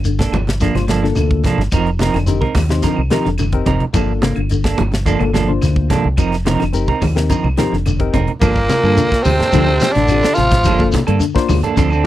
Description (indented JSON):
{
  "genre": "afrobeat",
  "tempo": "108 BPM",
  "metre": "4/4",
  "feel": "straight",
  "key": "G minor",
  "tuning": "A4 = 440 Hz",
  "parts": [
    { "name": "semi-hollow electric guitar", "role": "arpeggios", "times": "0.0-12.1 s", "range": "C3 to F3", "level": "-23 LUFS", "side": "left 7 dB", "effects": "ensemble chorus" },
    { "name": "deep dub fingered electric bass", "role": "bass", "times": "0.0-12.0 s", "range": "F1 to G2", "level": "-18 LUFS", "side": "equal", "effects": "none" },
    { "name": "shekere", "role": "percussion", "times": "0.0-12.1 s", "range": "none", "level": "-24 LUFS", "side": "left 1 dB", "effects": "none" },
    { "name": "tight funk drum kit", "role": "drums", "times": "0.1-11.9 s", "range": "hi-hat, kick drum, snare drum", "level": "-20 LUFS", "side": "equal", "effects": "none" },
    { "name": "clean electric guitar", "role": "stabs", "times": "0.2-12.1 s", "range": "F3 to Bb4", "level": "-19 LUFS", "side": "right 6 dB", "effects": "tremolo" },
    { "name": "congas", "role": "percussion", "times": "0.2-11.8 s", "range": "none", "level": "-23 LUFS", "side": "right 2 dB", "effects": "none" },
    { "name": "claves", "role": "percussion", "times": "0.3-12.0 s", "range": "none", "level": "-34 LUFS", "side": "right 2 dB", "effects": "none" },
    { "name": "bright reed electric piano", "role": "accompaniment", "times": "0.7-12.1 s", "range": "Bb3 to C5", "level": "-21 LUFS", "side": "left 8 dB", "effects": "overdrive, phaser" },
    { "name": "raspy tenor saxophone", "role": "melody", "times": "8.4-10.9 s", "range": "Bb3 to F4", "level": "-16 LUFS", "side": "equal", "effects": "none" },
    { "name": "raspy baritone saxophone", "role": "second line", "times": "8.4-10.9 s", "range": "Bb2 to F3", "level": "-24 LUFS", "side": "right 6 dB", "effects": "none" },
    { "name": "warm trombone", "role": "second line", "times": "8.4-10.9 s", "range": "Bb2 to F3", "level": "-24 LUFS", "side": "right 3 dB", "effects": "none" }
  ],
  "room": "little or no reverb",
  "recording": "dry, close 1970s-style studio recording",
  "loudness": "-13 LUFS",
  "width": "side -14 dB against mid",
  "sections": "0.0-8.4 A section; 8.4-12.1 B section",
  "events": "none",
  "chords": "0.0 Gm9; 1.7 F7sus4; 3.9 Gm9; 6.2 F7sus4; 8.4 Gm9; 9.5 Dm7; 10.7 Gm9",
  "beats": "0.04 0.60 1.16 | 1.71 2.27 2.83 3.39 | 3.95 4.51 5.07 5.62 | 6.18 6.74 7.30 7.86 | 8.42 8.98 9.53 10.09 | 10.65 11.21 11.77"
}